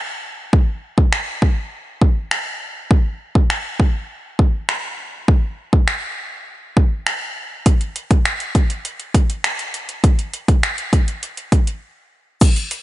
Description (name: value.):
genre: pop.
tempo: 101 BPM.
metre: 4/4.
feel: straight.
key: none.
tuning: none.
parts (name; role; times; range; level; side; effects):
pop drum kit; drums; 0.5-12.8 s; crash cymbal, finger snaps, hi-hat, kick drum; -16 LUFS; equal; overdrive.
egg shaker; percussion; 12.4-12.8 s; none; -28 LUFS; left 5 dB; none.
room: light reverb.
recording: nothing above 10.7 kHz.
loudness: -16 LUFS.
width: side -16 dB against mid.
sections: 0.0-12.4 A section.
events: break 11.8-12.4.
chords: none.